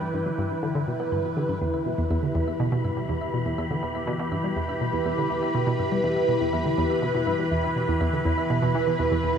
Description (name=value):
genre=ambient, sequencer-driven space music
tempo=122 BPM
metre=4/4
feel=straight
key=E minor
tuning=A4 = 438 Hz
part: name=phased analog pad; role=sustained chords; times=0.0-9.4 s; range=E3 to B5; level=-26 LUFS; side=equal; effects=phaser, chorus
part: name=thumb-piano-like synth pluck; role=arpeggios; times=0.0-9.4 s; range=E3 to E5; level=-35 LUFS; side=right 2 dB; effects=chorus, auto-pan, analog delay
part: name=analog pluck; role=riff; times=0.0-9.4 s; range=E2 to B3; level=-27 LUFS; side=right 1 dB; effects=chorus, analog delay
part: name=wind-like tuned noise texture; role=texture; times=0.0-9.4 s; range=B4 to B5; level=-33 LUFS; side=left 1 dB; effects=built-in reverb
room=wet huge ambient reverb, RT60 7.5 s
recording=in a vast, echoing space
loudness=-23 LUFS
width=side -7 dB against mid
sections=0.0-9.4 A section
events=fade-in on synth arpeggio sound 0.0-9.4; filter sweep on synth arpeggio sound 0.0-9.4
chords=0.0 G; 1.6 Em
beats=0.14 0.63 1.12 | 1.61 2.11 2.60 3.09 | 3.58 4.07 4.57 5.06 | 5.55 6.04 6.53 7.03 | 7.52 8.01 8.50 8.99